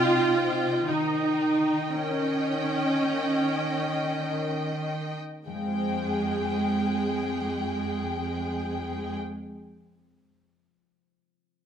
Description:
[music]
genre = cinematic, emotional film score for orchestra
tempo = 47-59 BPM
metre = 4/4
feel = rubato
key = F minor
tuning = A4 = 438 Hz
[part]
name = warm symphonic violin section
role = second line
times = 0.0-9.2 s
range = Ab4 to G5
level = -32 LUFS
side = left 3 dB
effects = none
[part]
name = warm symphonic viola section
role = accompaniment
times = 0.0-9.2 s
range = Ab3 to F4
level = -27 LUFS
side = right 2 dB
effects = none
[part]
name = concert harp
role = arpeggios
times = 0.0-9.4 s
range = C3 to G5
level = -37 LUFS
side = left 10 dB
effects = none
[part]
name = rich studio cello section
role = bass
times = 0.0-9.2 s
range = F2 to Eb3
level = -34 LUFS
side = right 2 dB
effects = none
[sound]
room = moderate recital hall reverb, RT60 1.4 s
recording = close, detailed microphones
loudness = -25 LUFS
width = side -8 dB against mid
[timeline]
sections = 0.0-5.5 A section; 5.5-10.4 B section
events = slowing down 0.0-5.5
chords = 0.0 Cm; 0.9 Eb; 5.5 Fmadd9

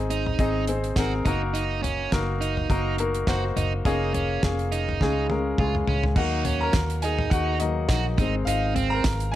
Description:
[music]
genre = piano-driven pop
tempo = 104 BPM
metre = 4/4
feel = swing 56% on 16ths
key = Eb dorian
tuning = A4 = 441 Hz
[part]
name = clear baby grand piano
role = accompaniment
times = 0.0-9.4 s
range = Ab2 to Bb5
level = -27 LUFS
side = left 3 dB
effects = none
[part]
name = vintage muted fingered electric bass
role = bass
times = 0.0-9.4 s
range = F1 to Eb2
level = -28 LUFS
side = equal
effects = none
[part]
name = overdriven electric guitar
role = riff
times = 0.1-9.0 s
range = C4 to Gb4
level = -30 LUFS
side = right 8 dB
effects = none
[part]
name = damped 70s drum kit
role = drums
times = 0.1-9.3 s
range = crash cymbal, hi-hat, kick drum, snare drum, toms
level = -26 LUFS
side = equal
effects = none
[sound]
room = moderate large studio reverb, RT60 0.9 s, small room ambience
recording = dark, warm production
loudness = -22 LUFS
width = side -13 dB against mid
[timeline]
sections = 0.0-6.2 A section; 6.2-9.4 B section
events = drum fill 5.0-6.2; grand piano solo 6.2-9.4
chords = 0.0 Ab; 1.3 Ebm/Gb; 3.9 Bbm7/F; 5.0 Db; 6.2 Ebm; 8.2 Ab

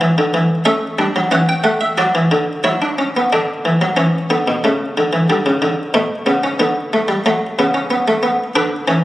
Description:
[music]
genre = classical, baroque-style 3-part fugue for harpsichord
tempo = 92 BPM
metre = 4/4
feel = straight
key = unclear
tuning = A4 = 439 Hz
[part]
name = buff-stop harpsichord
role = solo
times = 0.0-9.0 s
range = B2 to G5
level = -14 LUFS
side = equal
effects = none
[sound]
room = wet recital hall reverb, RT60 1.5 s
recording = recorded on a phone in the room, studio ambience, compression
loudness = -14 LUFS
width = side -15 dB against mid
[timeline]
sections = 0.0-3.3 A section; 3.3-9.0 B section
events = none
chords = 0.0 E5/D; 0.7 A7; 2.0 D; 3.3 Bm/D; 4.6 A/C#; 5.9 G/B; 7.2 F#m

